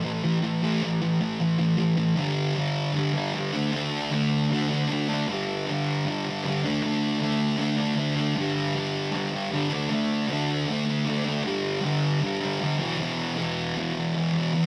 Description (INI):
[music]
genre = rock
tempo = 155 BPM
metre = 4/4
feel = straight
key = unclear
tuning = A4 = 440 Hz
[part]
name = thick fuzz guitar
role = solo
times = 0.0-14.7 s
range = E2 to D4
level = -26 LUFS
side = equal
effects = distortion
[sound]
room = moderate stone room reverb, RT60 1.1 s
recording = rough rehearsal-room recording, warm saturation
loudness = -26 LUFS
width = mono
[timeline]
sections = 0.0-2.2 A section; 2.2-14.5 B section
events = none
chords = 0.0 A5; 2.2 G5; 3.5 D5; 5.3 G5; 6.6 D5; 8.4 G5; 9.7 D5; 11.5 G5; 12.8 E5